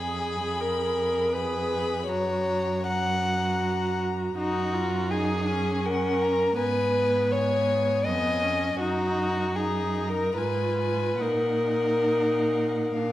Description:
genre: classical, slow romantic movement for string quartet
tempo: 68-83 BPM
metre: 3/4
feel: rubato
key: F# major, Eb minor from 4.4 s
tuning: A4 = 440 Hz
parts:
  - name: rich violin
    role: melody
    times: 0.0-13.1 s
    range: F5 to Cb6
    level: -35 LUFS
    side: left 7 dB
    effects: none
  - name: dark violin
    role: second line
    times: 0.0-13.1 s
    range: Gb4 to F#5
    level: -26 LUFS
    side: left 2 dB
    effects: none
  - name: warm viola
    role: accompaniment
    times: 0.0-13.1 s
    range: Cb4 to Ab4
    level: -31 LUFS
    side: right 1 dB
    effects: none
  - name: rich cello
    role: bass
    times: 0.0-13.1 s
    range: F2 to Bb2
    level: -30 LUFS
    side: right 3 dB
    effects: none
room: wet recital hall reverb, RT60 1.5 s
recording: none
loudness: -23 LUFS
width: side -14 dB against mid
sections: 0.0-13.1 A section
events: none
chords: 0.0 Fdim; 2.1 F#; 4.4 Ebm/Gb; 6.6 Fdim/Ab; 8.8 Ebm/Gb; 10.4 Fdim/Ab; 11.2 Ebm/Bb

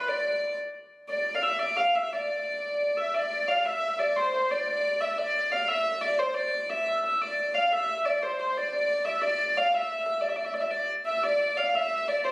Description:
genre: medieval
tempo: 118 BPM (dotted quarters)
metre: 6/8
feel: straight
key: D minor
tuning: A4 = 440 Hz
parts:
  - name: dark hurdy-gurdy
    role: solo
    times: 0.0-12.3 s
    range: C5 to F5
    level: -24 LUFS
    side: equal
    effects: none
room: wet recital hall reverb, RT60 1.3 s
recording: recorded on a phone in the room, club reverb, compression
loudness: -24 LUFS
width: side -22 dB against mid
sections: 0.0-3.1 A section; 3.1-11.2 B section; 11.2-12.3 B section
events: none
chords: none

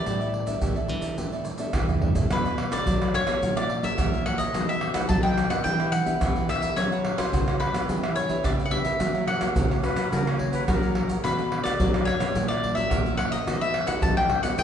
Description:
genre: samba and choro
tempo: 107 BPM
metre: 4/4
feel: straight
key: B minor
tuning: A4 = 440 Hz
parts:
  - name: mandolin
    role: melody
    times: 0.0-14.6 s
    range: B4 to A5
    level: -28 LUFS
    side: left 2 dB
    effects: none
  - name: cavaquinho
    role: accompaniment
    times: 0.0-14.6 s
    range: D4 to F#5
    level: -34 LUFS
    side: right 4 dB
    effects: none
  - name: nylon-string guitar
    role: accompaniment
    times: 0.0-14.6 s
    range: F#2 to G4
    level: -33 LUFS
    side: left 5 dB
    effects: none
  - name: nylon-string guitar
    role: bass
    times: 0.0-14.6 s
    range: A2 to F#3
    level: -30 LUFS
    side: equal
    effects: none
  - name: egg shaker, surdo, pandeiro and tamborim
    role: percussion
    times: 0.1-14.6 s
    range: none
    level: -26 LUFS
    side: right 1 dB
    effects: none
  - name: breathy jazz flute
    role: second line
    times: 9.8-11.1 s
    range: A#4 to C#5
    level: -32 LUFS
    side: left 3 dB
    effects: none
room: wet recital hall reverb, RT60 1.4 s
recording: recorded in a church or concert hall, nothing above 10.4 kHz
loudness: -22 LUFS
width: side -8 dB against mid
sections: 0.0-2.3 A section; 2.3-14.6 B section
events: drum fill 1.7-2.3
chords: 0.1 A9sus4; 2.3 Bm7; 3.4 F#7/A#; 4.5 B7; 5.7 Em7; 6.8 F#sus4; 7.9 Em7; 9.0 F#; 11.2 Bm7; 12.4 F#7/A#; 13.5 B7

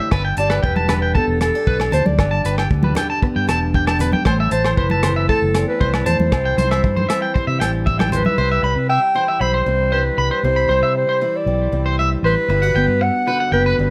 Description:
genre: highlife guitar band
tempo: 116 BPM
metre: 4/4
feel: straight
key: unclear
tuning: A4 = 440 Hz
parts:
  - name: picked steel-string acoustic guitar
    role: accompaniment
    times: 0.0-13.9 s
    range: E2 to G4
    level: -28 LUFS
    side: equal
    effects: none
  - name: electric guitar at the edge of break-up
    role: arpeggios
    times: 0.0-13.8 s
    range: B4 to B5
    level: -25 LUFS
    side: equal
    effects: tape echo
  - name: fingered electric bass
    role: bass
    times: 0.1-13.9 s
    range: E1 to C3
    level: -23 LUFS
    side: equal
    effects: none
  - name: warm soul drum kit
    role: drums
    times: 0.1-8.2 s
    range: hi-hat, kick drum, rim click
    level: -24 LUFS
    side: equal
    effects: none
  - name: agogo bells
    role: percussion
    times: 0.1-8.1 s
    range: none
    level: -32 LUFS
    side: equal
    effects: none
  - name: warm clarinet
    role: melody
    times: 0.4-13.9 s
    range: A4 to G5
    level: -22 LUFS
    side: equal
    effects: none
  - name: congas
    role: percussion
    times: 0.8-8.4 s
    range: none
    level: -26 LUFS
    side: equal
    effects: none
room: moderate studio reverb, RT60 0.6 s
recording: none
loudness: -18 LUFS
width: mono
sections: 0.0-8.4 A section; 8.4-13.9 B section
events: none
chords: 0.1 Gadd9; 4.3 Am; 6.3 C; 8.4 Cmaj7; 12.5 Gmaj7

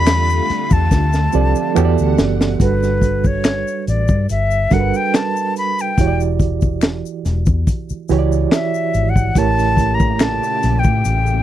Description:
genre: R&B, neo-soul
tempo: 71 BPM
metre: 4/4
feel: straight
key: unclear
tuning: A4 = 442 Hz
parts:
  - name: concert flute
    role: melody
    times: 0.0-11.4 s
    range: B4 to B5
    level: -20 LUFS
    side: left 2 dB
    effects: slapback echo
  - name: barky reed electric piano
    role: accompaniment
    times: 0.0-11.4 s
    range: E3 to D5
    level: -21 LUFS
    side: right 10 dB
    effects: overdrive, fast tremolo
  - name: soft string machine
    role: sustained chords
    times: 0.0-2.6, 9.4-11.4 s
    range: Bb2 to F#5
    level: -26 LUFS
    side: left 2 dB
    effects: ensemble chorus
  - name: vintage muted fingered electric bass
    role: bass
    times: 0.0-11.4 s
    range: E1 to A2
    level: -18 LUFS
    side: left 1 dB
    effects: none
  - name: crunchy breakbeat drum kit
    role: drums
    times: 0.1-11.3 s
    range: finger snaps, hi-hat, kick drum, snare drum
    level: -17 LUFS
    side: left 1 dB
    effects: none
  - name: finger snaps and tube shaker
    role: percussion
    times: 0.1-11.4 s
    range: none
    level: -34 LUFS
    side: left 21 dB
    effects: none
room: little or no reverb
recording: dry, close 1970s-style studio recording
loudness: -14 LUFS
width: side -12 dB against mid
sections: 0.0-2.6 A section; 2.6-11.4 B section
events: drum fill 0.9-2.6; flute solo 2.6-11.4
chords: 0.0 F69; 1.8 Em11; 2.6 Gmaj9; 6.0 Em7; 9.4 A7b9

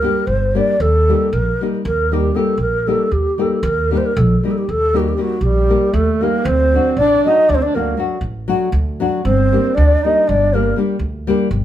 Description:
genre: balkan folk, Balkan wedding band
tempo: 234 BPM (eighths)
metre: 11/8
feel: straight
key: unclear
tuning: A4 = 440 Hz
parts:
  - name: breathy mellow low ney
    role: melody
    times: 0.0-10.8 s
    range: F#4 to Eb5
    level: -17 LUFS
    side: equal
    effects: none
  - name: nylon-string guitar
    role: accompaniment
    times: 0.0-11.5 s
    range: F#3 to G4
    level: -20 LUFS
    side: left 4 dB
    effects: none
  - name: upright bass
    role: bass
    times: 0.0-11.6 s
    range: G1 to Eb2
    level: -18 LUFS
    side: equal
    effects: none
  - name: dark clarinet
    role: second line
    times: 5.4-10.8 s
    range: G3 to Eb4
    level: -21 LUFS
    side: right 5 dB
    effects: none
room: moderate large studio reverb, RT60 0.8 s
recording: band playing live in one room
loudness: -14 LUFS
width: side -11 dB against mid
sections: 0.0-11.6 A section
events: none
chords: 0.0 Gm; 0.8 Eb; 6.4 D; 9.2 Gm

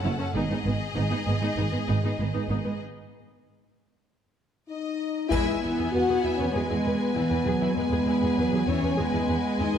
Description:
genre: cinematic, epic orchestral film score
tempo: 98 BPM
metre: 4/4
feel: straight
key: E major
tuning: A4 = 439 Hz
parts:
  - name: bright symphonic violin section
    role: second line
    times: 0.0-9.8 s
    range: G#4 to F#5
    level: -35 LUFS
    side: left 4 dB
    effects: none
  - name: rich symphonic viola section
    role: accompaniment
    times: 0.0-9.8 s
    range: B3 to B4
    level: -33 LUFS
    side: right 1 dB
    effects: none
  - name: clear studio double bass section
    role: bass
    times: 0.0-9.8 s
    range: F#1 to E2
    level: -30 LUFS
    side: right 2 dB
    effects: none
  - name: clear symphonic cello section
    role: bass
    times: 0.0-9.8 s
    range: F#2 to B3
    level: -29 LUFS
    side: right 3 dB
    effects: none
  - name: mellow French horn section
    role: sustained chords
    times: 4.7-9.8 s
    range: B3 to F#4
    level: -26 LUFS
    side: left 2 dB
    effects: none
  - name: clear symphonic violin section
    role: melody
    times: 5.3-9.8 s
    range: G#5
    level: -34 LUFS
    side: left 3 dB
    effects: none
  - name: taiko ensemble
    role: drums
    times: 5.3-6.5 s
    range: none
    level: -32 LUFS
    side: equal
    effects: none
  - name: triangle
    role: percussion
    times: 5.3-6.5 s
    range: none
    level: -49 LUFS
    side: left 1 dB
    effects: none
room: moderate scoring stage reverb, RT60 1.8 s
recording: dark, warm production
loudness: -24 LUFS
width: side -8 dB against mid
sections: 0.0-5.3 A section; 5.3-9.8 B section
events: build-up 0.0-5.3; break 2.8-5.3; band accent 5.3-5.9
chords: 0.3 G#m; 5.3 E

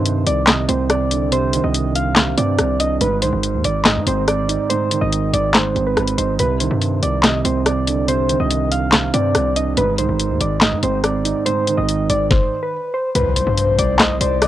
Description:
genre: hip hop, trap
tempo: 142 BPM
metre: 4/4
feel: half-time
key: C harmonic minor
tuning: A4 = 439 Hz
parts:
  - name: soft electric-piano-like synth keys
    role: melody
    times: 0.0-14.5 s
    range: B4 to F5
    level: -21 LUFS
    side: equal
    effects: chorus, low-pass filter, tape echo, plate reverb
  - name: felt-muted upright piano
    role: accompaniment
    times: 0.0-12.7 s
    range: Ab2 to Eb4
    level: -21 LUFS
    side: right 6 dB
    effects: low-pass filter, cassette tape
  - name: distorted 808-style bass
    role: bass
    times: 0.0-14.5 s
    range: Ab1 to Ab2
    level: -22 LUFS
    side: left 1 dB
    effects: distortion
  - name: trap drum kit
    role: drums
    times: 0.1-14.5 s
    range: handclaps, hi-hat, kick drum, rim click, snare drum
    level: -16 LUFS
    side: left 1 dB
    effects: cassette tape
  - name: breathy flute-like synth lead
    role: second line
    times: 13.2-14.5 s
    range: C5 to Eb5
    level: -21 LUFS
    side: left 8 dB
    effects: chorus, cassette tape, tape echo
  - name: airy breathy pad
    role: sustained chords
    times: 13.2-14.5 s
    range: C3 to Eb4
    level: -30 LUFS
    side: right 1 dB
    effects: chorus, phaser, cassette tape
  - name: impact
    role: sound effects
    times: 13.2-14.5 s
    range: none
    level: -24 LUFS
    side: left 1 dB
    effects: none
room: light reverb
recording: home recording on cassette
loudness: -15 LUFS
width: side -13 dB against mid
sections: 0.0-13.2 A section; 13.2-14.5 B section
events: impact 13.2-14.5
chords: 0.0 Cmadd9; 3.0 Ab; 6.4 Cmadd9; 9.8 Ab; 13.2 Cmadd9

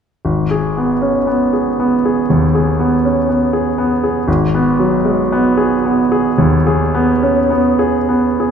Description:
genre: classical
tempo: 49-61 BPM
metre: 4/4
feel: rubato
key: G# minor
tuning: A4 = 440 Hz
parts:
  - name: bright concert grand piano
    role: accompaniment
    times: 0.2-8.5 s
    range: G#1 to G#4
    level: -12 LUFS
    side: equal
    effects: none
room: wet scoring stage reverb, RT60 1.9 s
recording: none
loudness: -12 LUFS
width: side -7 dB against mid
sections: 0.2-8.5 A section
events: none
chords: 0.2 G#m7

